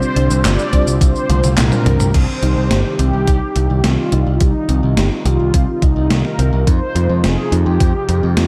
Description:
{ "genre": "synthwave", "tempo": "106 BPM", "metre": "4/4", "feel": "straight", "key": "C minor", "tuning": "A4 = 440 Hz", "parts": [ { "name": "mellow synth brass", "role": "melody", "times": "0.0-8.5 s", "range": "Eb4 to D5", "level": "-24 LUFS", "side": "equal", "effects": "chorus, delay" }, { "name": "phased analog pad", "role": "sustained chords", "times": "0.0-8.5 s", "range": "C3 to G4", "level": "-28 LUFS", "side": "equal", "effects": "phaser, chorus, sidechain pumping" }, { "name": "thumb-piano-like synth pluck", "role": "arpeggios", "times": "0.0-8.5 s", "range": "C4 to G4", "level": "-27 LUFS", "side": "equal", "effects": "chorus, digital delay" }, { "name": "FM electric piano with soft pad layer", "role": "stabs", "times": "0.0-2.1 s", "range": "C3 to C5", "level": "-26 LUFS", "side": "equal", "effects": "chorus, tremolo, low-pass filter, digital delay" }, { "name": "gated 80s digital drum machine", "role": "drums", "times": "0.0-8.5 s", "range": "crash cymbal, handclaps, hi-hat, shaker, snare drum, toms", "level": "-22 LUFS", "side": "equal", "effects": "gated reverb, gated reverb snare, overdrive" }, { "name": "modern bright picked electric bass", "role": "bass", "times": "0.2-8.5 s", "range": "F1 to F2", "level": "-18 LUFS", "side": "equal", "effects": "none" }, { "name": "electronic kick drum", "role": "drums", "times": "0.7-7.9 s", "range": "none", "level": "-17 LUFS", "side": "equal", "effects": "overdrive" } ], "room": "light reverb", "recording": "dark, warm production", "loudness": "-15 LUFS", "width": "mono", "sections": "0.0-2.1 A section; 2.1-8.5 B section", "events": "drum fill 1.3-2.1; kick drops out 1.6-2.1; filter sweep on synth arpeggio sound 2.1-8.5", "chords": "0.0 G7sus4; 2.1 Cm; 6.7 Fm7" }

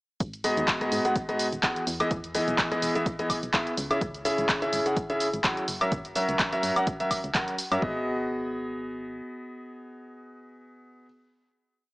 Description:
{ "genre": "piano house", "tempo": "126 BPM", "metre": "4/4", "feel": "swing 55% on 16ths", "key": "G# minor", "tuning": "A4 = 445 Hz", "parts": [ { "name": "solid FM bass", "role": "bass", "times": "0.2-9.2 s", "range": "D#1 to G#2", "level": "-37 LUFS", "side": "equal", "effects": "tube saturation, sidechain pumping" }, { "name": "electronic kick drum", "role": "drums", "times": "0.2-7.9 s", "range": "none", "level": "-31 LUFS", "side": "equal", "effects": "none" }, { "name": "house drum kit", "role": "drums", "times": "0.2-7.8 s", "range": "handclaps, hi-hat, shaker, woodblock", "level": "-28 LUFS", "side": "equal", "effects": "overdrive" }, { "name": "clear concert grand piano", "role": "riff", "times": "0.4-11.1 s", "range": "G#2 to F#5", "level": "-28 LUFS", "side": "equal", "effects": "sidechain pumping, dub echo" } ], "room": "light reverb, digital ambience", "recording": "small speaker sound", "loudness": "-25 LUFS", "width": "side -22 dB against mid", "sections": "0.2-7.8 drop; 7.8-11.6 final chord", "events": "drop 0.2-7.8", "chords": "0.2 G#m7; 1.9 Emaj7; 3.8 C#m; 5.7 F#7; 7.8 G#m7" }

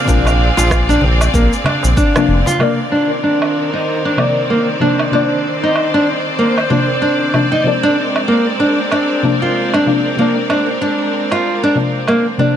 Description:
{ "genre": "organic downtempo", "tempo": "95 BPM", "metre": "4/4", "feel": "swing 59% on 16ths", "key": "C minor", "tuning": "A4 = 440 Hz", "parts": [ { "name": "deep mellow chord stab", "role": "accompaniment", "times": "0.0-12.6 s", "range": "C3 to D5", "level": "-19 LUFS", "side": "left 3 dB", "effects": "chorus, sidechain pumping, digital delay" }, { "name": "clear studio string section", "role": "sustained chords", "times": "0.0-12.6 s", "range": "Eb3 to D5", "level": "-20 LUFS", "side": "equal", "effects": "sidechain pumping" }, { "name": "drifting glass-harmonics texture", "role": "texture", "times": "0.0-12.6 s", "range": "C5 to F5", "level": "-24 LUFS", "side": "right 2 dB", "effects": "chorus, built-in reverb" }, { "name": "nylon-string guitar", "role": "arpeggios", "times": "0.1-12.6 s", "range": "Bb3 to F4", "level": "-16 LUFS", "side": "equal", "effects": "low-pass filter, digital delay" }, { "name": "smooth synth bass", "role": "bass", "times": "0.1-2.4 s", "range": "F1 to Bb1", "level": "-14 LUFS", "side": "equal", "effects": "sidechain pumping" }, { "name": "electronic cabasa, woodblock and rim click", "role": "drums", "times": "0.1-12.2 s", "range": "none", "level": "-22 LUFS", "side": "right 2 dB", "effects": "low-pass filter on perc, small room ambience, low-pass filter on snare" }, { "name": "electronic kick drum", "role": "drums", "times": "0.1-2.1 s", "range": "none", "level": "-17 LUFS", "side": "equal", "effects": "small room ambience" }, { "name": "darbuka", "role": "percussion", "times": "0.2-2.6 s", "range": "none", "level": "-24 LUFS", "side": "equal", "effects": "none" } ], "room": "light reverb", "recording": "none", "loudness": "-12 LUFS", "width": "side -9 dB against mid", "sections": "0.0-2.6 A section; 2.6-12.6 B section", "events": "band accent 2.1-2.4", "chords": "0.0 Bb9; 2.6 Cm9; 7.7 Bb9" }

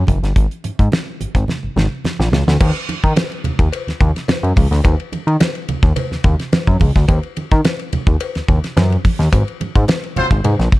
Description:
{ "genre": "funk", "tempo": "107 BPM", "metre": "4/4", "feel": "straight", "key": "unclear", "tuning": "A4 = 441 Hz", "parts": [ { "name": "fat analog bass", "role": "bass", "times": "0.0-10.7 s", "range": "Gb1 to Eb3", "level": "-16 LUFS", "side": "equal", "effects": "none" }, { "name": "damped 70s drum kit", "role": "drums", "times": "0.1-10.8 s", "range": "crash cymbal, hi-hat, kick drum, ride cymbal, snare drum", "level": "-16 LUFS", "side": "equal", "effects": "none" }, { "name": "congas", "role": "percussion", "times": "0.1-10.8 s", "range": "none", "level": "-25 LUFS", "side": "right 4 dB", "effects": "none" }, { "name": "cowbell", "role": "percussion", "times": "2.6-10.6 s", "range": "none", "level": "-29 LUFS", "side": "left 7 dB", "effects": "none" }, { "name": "warm horn section", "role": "second line", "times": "10.2-10.3 s", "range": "Gb3 to C5", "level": "-20 LUFS", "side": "left 2 dB", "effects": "none" } ], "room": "small room ambience", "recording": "dark, warm production", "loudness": "-14 LUFS", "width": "side -19 dB against mid", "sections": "0.0-2.6 A section; 2.6-10.8 B section", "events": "drum fill 1.5-2.6; band accent 9.3-10.8", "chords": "0.4 N.C.; 9.3 Absus2" }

